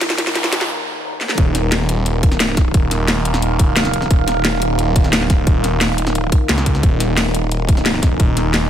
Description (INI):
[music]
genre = dark technical drum and bass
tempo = 176 BPM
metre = 4/4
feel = straight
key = unclear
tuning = A4 = 440 Hz
[part]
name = deep dark ambient pad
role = sustained chords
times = 0.0-8.7 s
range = Eb4 to Bb5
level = -23 LUFS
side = right 1 dB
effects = chorus, built-in reverb, sidechain pumping
[part]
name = snarling distorted saw bass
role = bass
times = 0.0-8.7 s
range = Eb1 to Db2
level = -19 LUFS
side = equal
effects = distortion, overdrive, high-pass filter
[part]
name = drum and bass drum kit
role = drums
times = 0.0-8.6 s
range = hi-hat, snare drum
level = -19 LUFS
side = equal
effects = overdrive, studio reverb
[part]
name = riser and noise sweep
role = sound effects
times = 0.0-1.4 s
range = none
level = -26 LUFS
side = right 1 dB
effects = none
[part]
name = electronic kick drum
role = drums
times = 1.4-8.3 s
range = none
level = -14 LUFS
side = equal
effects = overdrive, studio reverb
[sound]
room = little or no reverb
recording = high-pass filter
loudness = -14 LUFS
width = side -10 dB against mid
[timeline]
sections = 0.0-1.4 A section; 1.4-8.7 B section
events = build-up 0.0-1.4; drum fill 0.0-0.7, 1.2; riser 0.0-0.7; noise sweep 0.0-1.4; break 0.7-1.4; drop 1.4-8.7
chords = 0.0 Ebsus2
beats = | 0.01 0.36 0.70 1.04 | 1.38 1.72 2.06 2.40 | 2.74 3.08 3.42 3.77 | 4.11 4.45 4.79 5.13 | 5.47 5.81 6.15 6.49 | 6.83 7.17 7.51 7.86 | 8.20 8.54